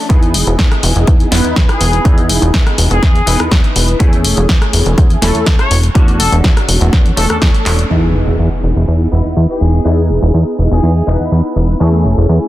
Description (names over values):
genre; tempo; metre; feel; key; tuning
filtered disco house; 123 BPM; 4/4; straight; E major; A4 = 439 Hz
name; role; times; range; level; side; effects
funky polysynth comp; accompaniment; 0.0-12.5 s; A3 to B4; -18 LUFS; equal; chorus, phaser, sidechain pumping, low-pass filter
plucky analog bass; bass; 0.1-12.4 s; E1 to E2; -12 LUFS; equal; sidechain pumping, low-pass filter
electronic kick drum; drums; 0.1-7.5 s; none; -10 LUFS; equal; none
punchy analog drum machine; drums; 0.1-7.9 s; handclaps, hi-hat, rim click, snare drum; -17 LUFS; left 1 dB; sidechain pumping on hats
bright trumpet section; melody; 1.7-11.2 s; G#4 to C#5; -21 LUFS; left 2 dB; sidechain pumping, low-pass filter, dub echo
impact; sound effects; 7.9-9.9 s; none; -21 LUFS; equal; none
room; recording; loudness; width
light reverb; dense, heavily limited modern master; -9 LUFS; side -15 dB against mid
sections
0.0-7.9 A section; 7.9-12.5 B section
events
filter sweep 0.0-7.9, 7.9-12.5; drum fill 7.7; impact 7.9-9.9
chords
0.1 Emaj7; 4.0 Amaj7/E; 5.7 Dmaj7/E; 7.9 Emaj7; 11.8 Amaj7/E